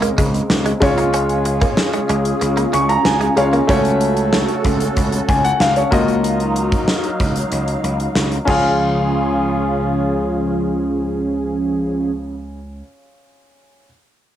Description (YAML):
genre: 1980s-style pop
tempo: 94 BPM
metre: 4/4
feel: straight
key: Db major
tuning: A4 = 440 Hz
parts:
  - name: clear concert grand piano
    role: accompaniment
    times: 0.0-13.9 s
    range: Ab3 to Db6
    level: -19 LUFS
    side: left 1 dB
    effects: cassette tape
  - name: phased analog pad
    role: sustained chords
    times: 0.0-12.1 s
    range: Db3 to F5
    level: -22 LUFS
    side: equal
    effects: phaser, chorus, cassette tape
  - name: direct-recorded clean electric guitar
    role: riff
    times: 0.0-3.6 s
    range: Ab3 to Db4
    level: -24 LUFS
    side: right 2 dB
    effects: analog chorus, cassette tape, analog delay
  - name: gritty slap bass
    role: bass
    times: 0.0-12.8 s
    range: Db2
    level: -22 LUFS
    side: equal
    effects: overdrive
  - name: gated 80s drum kit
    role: drums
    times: 0.0-8.6 s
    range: crash cymbal, hi-hat, kick drum, snare drum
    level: -20 LUFS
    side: equal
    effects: none
  - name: mellow synth brass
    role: stabs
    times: 0.8-12.1 s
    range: F3 to Bb4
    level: -22 LUFS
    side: right 2 dB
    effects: chorus, cassette tape, analog delay
room: wet small room ambience, RT60 0.5 s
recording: home recording on cassette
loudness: -15 LUFS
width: side -11 dB against mid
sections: 0.0-8.8 A section; 8.8-11.3 B section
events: grand piano fill 2.4-3.7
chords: 0.0 Abadd9/Db; 0.8 Db; 3.7 Gbm/Db; 5.9 Ebmadd9/Db; 8.5 Db